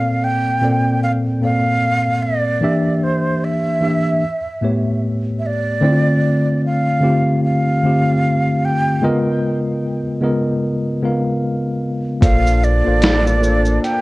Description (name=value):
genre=lo-fi hip hop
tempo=75 BPM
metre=4/4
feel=swing 60% on 16ths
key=Bb major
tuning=A4 = 440 Hz
part: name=breathy mellow silver concert flute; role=melody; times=0.0-14.0 s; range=C5 to G5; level=-20 LUFS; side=right 1 dB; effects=none
part: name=mellow tine electric piano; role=accompaniment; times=0.0-14.0 s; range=A2 to F5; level=-17 LUFS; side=equal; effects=medium stereo tremolo
part: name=warm analog pad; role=sustained chords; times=12.2-14.0 s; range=Bb3 to A4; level=-28 LUFS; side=left 1 dB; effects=chorus
part: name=sub bass with octave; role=bass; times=12.2-13.8 s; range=A1 to Bb1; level=-16 LUFS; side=equal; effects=none
part: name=dusty soul sampler-style drum kit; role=drums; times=12.2-14.0 s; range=hi-hat, kick drum, shaker, snare drum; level=-16 LUFS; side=equal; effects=none
room=moderate studio ambience, RT60 0.5 s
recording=worn, warbling old tape, cassette tape, warbly pitch drift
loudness=-15 LUFS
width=side -20 dB against mid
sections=0.0-12.2 A section; 12.2-14.0 B section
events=break 9.0-12.2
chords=0.0 Bbmaj9; 2.6 Em7b5; 4.2 A7; 5.8 Dm7; 9.0 Db13; 12.2 Bbmaj9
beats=0.22 1.02 1.82 | 2.62 3.42 4.22 5.02 | 5.82 6.62 7.42 8.22 | 9.02 9.82 10.62 11.42 | 12.22 13.02 13.82